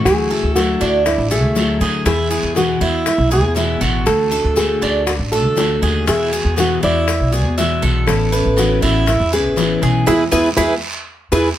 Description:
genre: latin, Cuban son and guajira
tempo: 120 BPM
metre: 4/4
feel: straight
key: unclear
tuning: A4 = 440 Hz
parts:
  - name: picked steel-string acoustic guitar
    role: accompaniment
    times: 0.0-11.5 s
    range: B2 to F#4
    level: -22 LUFS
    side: left 4 dB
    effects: none
  - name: Cuban tres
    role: arpeggios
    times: 0.0-11.5 s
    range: A3 to E5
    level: -21 LUFS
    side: right 3 dB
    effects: none
  - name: upright bass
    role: bass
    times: 0.0-11.5 s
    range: A1 to D3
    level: -20 LUFS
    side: equal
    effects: none
  - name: nylon-string guitar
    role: melody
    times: 0.1-11.5 s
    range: E4 to D5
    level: -19 LUFS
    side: right 1 dB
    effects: none
  - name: bongos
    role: percussion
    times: 0.1-11.4 s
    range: none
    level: -26 LUFS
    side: left 6 dB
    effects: none
  - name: guiro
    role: percussion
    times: 0.1-11.4 s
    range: none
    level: -27 LUFS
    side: right 4 dB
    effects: none
  - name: maracas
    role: percussion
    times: 0.1-11.4 s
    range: none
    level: -31 LUFS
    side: left 4 dB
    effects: none
room: light reverb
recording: none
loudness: -14 LUFS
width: side -12 dB against mid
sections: 0.0-11.6 A section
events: band accent 10.1-11.6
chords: 0.1 Dadd9; 2.1 E; 4.1 D; 6.1 Eadd9; 8.1 Aadd9; 10.1 E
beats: | 0.06 0.56 1.06 1.56 | 2.07 2.57 3.07 3.57 | 4.07 4.57 5.07 5.57 | 6.07 6.57 7.07 7.57 | 8.07 8.57 9.07 9.57 | 10.07 10.57 11.07

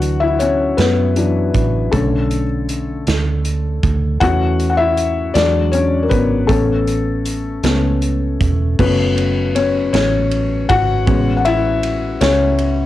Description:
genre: six-eight pop ballad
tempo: 52 BPM (dotted quarters)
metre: 6/8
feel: straight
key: A major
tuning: A4 = 440 Hz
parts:
  - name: felt-muted upright piano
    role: accompaniment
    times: 0.0-12.9 s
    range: D3 to F#5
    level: -16 LUFS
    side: left 4 dB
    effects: cassette tape
  - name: vintage muted fingered electric bass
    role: bass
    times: 0.0-12.9 s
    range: E1 to F#2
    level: -18 LUFS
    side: right 2 dB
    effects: none
  - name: modern studio drum kit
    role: drums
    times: 0.0-12.8 s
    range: crash cymbal, hi-hat, kick drum, ride cymbal, snare drum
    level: -22 LUFS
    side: right 2 dB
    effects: cassette tape
room: light reverb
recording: home recording on cassette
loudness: -14 LUFS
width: side -14 dB against mid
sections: 0.0-8.8 A section; 8.8-12.9 B section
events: felt piano solo 0.0-8.8, 8.8-12.9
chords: 0.0 Dadd9; 1.9 Bm7; 4.2 A/E; 5.4 E7; 6.5 Aadd9; 8.8 F#m; 11.1 Amaj7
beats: 0.78 | 1.93 3.07 | 4.21 5.35 | 6.49 7.63 | 8.79 9.93 | 11.07 12.21

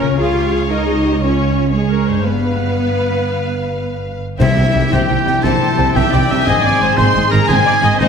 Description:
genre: cinematic, heroic adventure film score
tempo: 116 BPM (dotted quarters)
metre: 12/8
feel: straight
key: unclear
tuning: A4 = 438 Hz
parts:
  - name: warm symphonic violin section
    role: melody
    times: 0.0-8.1 s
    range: Db5 to C6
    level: -21 LUFS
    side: left 4 dB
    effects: none
  - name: rich symphonic violin section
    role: second line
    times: 0.0-8.1 s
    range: G3 to F5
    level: -24 LUFS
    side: left 3 dB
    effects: none
  - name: warm symphonic viola section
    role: accompaniment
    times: 0.0-8.1 s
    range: F4 to E5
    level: -22 LUFS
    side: right 2 dB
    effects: none
  - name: dark French horn section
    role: sustained chords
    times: 0.0-8.1 s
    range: Ab3 to F4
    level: -22 LUFS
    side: left 4 dB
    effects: none
  - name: concert harp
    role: arpeggios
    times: 0.0-8.1 s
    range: G2 to F5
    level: -23 LUFS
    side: left 7 dB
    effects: none
  - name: rich studio double bass section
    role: bass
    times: 0.0-8.1 s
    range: G1 to Db2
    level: -20 LUFS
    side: right 4 dB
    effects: none
  - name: warm symphonic cello section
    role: bass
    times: 0.0-8.1 s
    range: Ab2 to F4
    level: -21 LUFS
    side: right 5 dB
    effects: none
  - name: bright oboe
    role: second line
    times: 4.4-8.1 s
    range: Eb4 to C5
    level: -20 LUFS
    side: right 2 dB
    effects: none
  - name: silver concert flute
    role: second line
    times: 4.4-8.1 s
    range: Eb5 to C6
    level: -22 LUFS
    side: left 2 dB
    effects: none
  - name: concert snare drum, clash cymbals and concert bass drum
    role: drums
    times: 4.4-8.1 s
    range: none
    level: -22 LUFS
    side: right 1 dB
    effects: none
  - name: timpani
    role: percussion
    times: 4.4-4.9 s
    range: C3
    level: -20 LUFS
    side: equal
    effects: none
room: wet scoring stage reverb, RT60 1.9 s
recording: none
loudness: -12 LUFS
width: side -6 dB against mid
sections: 0.0-4.4 A section; 4.4-8.1 B section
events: none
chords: 0.2 Db; 2.3 G7; 4.4 C; 6.5 Ab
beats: | 0.20 0.71 1.22 1.75 | 2.27 2.80 3.34 3.87 | 4.40 4.92 5.44 5.96 | 6.47 6.98 7.50 8.01

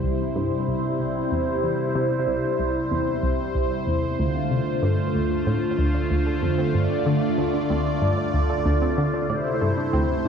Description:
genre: ambient, sequencer-driven space music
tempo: 94 BPM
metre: 4/4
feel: straight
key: D minor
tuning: A4 = 440 Hz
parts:
  - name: phased analog pad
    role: sustained chords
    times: 0.0-10.3 s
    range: C3 to D5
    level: -23 LUFS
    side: equal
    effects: phaser, chorus
  - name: analog pluck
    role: riff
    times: 0.0-10.3 s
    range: C2 to D3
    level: -25 LUFS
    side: equal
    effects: chorus, tape echo
  - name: warbly dusty pluck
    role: arpeggios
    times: 0.2-10.3 s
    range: C4 to D5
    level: -34 LUFS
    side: moving between left 2 dB and right 4 dB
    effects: chorus, auto-pan, tape echo
room: wet scoring stage reverb, RT60 2.2 s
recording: dark, warm production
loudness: -21 LUFS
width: side -7 dB against mid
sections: 0.0-10.3 A section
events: fade-in on synth arpeggio sound 0.0-10.3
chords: 0.0 C; 4.2 Dm7; 9.3 Am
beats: 0.36 1.00 | 1.64 2.27 2.91 3.55 | 4.19 4.83 5.47 6.10 | 6.74 7.38 8.02 8.66 | 9.30 9.93

